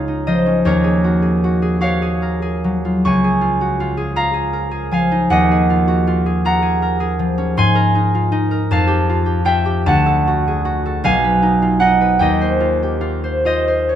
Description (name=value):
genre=classical, solo harp piece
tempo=52 BPM (dotted quarters)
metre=6/8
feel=uneven beats, rubato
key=unclear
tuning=A4 = 441 Hz
part: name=concert harp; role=solo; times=0.0-14.0 s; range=B1 to Db6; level=-14 LUFS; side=equal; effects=none
room=moderate recital hall reverb, RT60 1.6 s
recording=close, detailed microphones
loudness=-14 LUFS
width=side -10 dB against mid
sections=0.0-14.0 A section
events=none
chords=0.0 Dbadd9; 0.7 Ebm11; 3.0 Dbadd9; 5.3 Ebm11; 7.5 Abadd9; 8.7 Fadd9; 9.9 Dadd9; 11.0 B; 12.2 Eb69